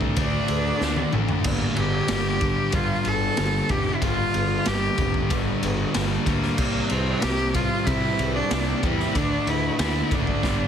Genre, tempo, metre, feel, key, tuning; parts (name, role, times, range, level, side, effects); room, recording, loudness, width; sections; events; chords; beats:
quiet-loud alternative rock; 94 BPM; 4/4; straight; A4 = 439 Hz
crunchy overdriven guitar; riff; 0.0-10.7 s; G2 to D4; -29 LUFS; left 13 dB
thick fuzz guitar; riff; 0.0-10.7 s; G2 to D4; -29 LUFS; right 12 dB; distortion
fuzz fingered electric bass; bass; 0.0-10.6 s; F1 to C3; -28 LUFS; equal; overdrive
raw garage drum kit; drums; 0.0-10.6 s; crash cymbal, kick drum, ride cymbal, snare drum, toms; -26 LUFS; equal
clear cello; melody; 0.2-10.7 s; A3 to A4; -27 LUFS; equal; digital delay
light reverb; heavily compressed radio sound, multiband compression; -21 LUFS; side -8 dB against mid
0.0-10.7 A section
drum fill 0.8-1.5, 10.4
0.0 D5; 1.5 G5; 6.6 C; 9.1 D5
0.17 0.81 | 1.46 2.10 2.74 3.38 | 4.02 4.66 5.30 5.94 | 6.58 7.23 7.87 8.51 | 9.15 9.79 10.43